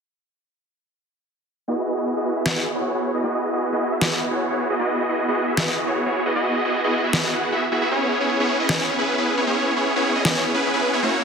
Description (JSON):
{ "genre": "future bass", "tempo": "154 BPM", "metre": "4/4", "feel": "half-time", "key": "E major", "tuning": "A4 = 438 Hz", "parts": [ { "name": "supersaw chords", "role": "riff", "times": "1.7-11.2 s", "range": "A#3 to F#5", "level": "-20 LUFS", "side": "equal", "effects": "low-pass filter, ping-pong delay" }, { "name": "electronic snare drum", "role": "drums", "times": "2.5-10.3 s", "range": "none", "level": "-23 LUFS", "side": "left 1 dB", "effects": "none" } ], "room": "moderate lush hall reverb, RT60 1.9 s", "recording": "dense, heavily limited modern master", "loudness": "-19 LUFS", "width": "side -6 dB against mid", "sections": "1.7-11.2 A section", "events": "filter sweep on supersaw synth 1.7-11.2", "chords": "1.7 Emaj9; 7.9 C#m7", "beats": "| 1.68 2.07 2.46 2.85 | 3.24 3.63 4.02 4.41 | 4.79 5.18 5.57 5.96 | 6.35 6.74 7.13 7.52 | 7.91 8.30 8.69 9.08 | 9.47 9.86 10.25 10.64 | 11.03" }